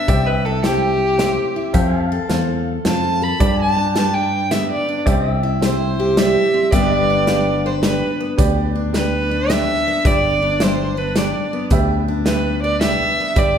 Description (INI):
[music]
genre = honky-tonk and classic country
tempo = 108 BPM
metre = 3/4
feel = swing 65% on 8ths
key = G mixolydian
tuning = A4 = 442 Hz
[part]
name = warm fiddle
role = melody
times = 0.0-13.6 s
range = G4 to B5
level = -20 LUFS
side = right 1 dB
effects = none
[part]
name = picked steel-string acoustic guitar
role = accompaniment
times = 0.0-13.6 s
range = G2 to B4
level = -22 LUFS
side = left 1 dB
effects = none
[part]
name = pedal steel guitar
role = sustained chords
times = 0.0-13.6 s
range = D5 to A5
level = -27 LUFS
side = left 2 dB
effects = none
[part]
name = bright upright piano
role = accompaniment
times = 0.1-13.6 s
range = G4 to G5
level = -26 LUFS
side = right 3 dB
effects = none
[part]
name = fretless electric bass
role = bass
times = 0.1-13.6 s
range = G1 to G2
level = -22 LUFS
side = left 1 dB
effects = none
[part]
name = natural country drum kit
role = drums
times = 0.1-13.5 s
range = hi-hat, kick drum, snare drum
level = -21 LUFS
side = equal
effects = none
[sound]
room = wet recital hall reverb, RT60 1.4 s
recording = recorded in a church or concert hall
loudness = -15 LUFS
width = side -8 dB against mid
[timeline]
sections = 0.0-5.1 A section; 5.1-13.6 B section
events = fiddle solo 0.0-5.1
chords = 0.1 C; 1.7 F; 3.4 G; 5.1 C; 6.7 G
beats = | 0.08 0.64 1.19 | 1.75 2.30 2.85 | 3.41 3.96 4.52 | 5.07 5.62 6.18 | 6.73 7.28 7.84 | 8.39 8.94 9.50 | 10.05 10.60 11.15 | 11.71 12.26 12.81 | 13.37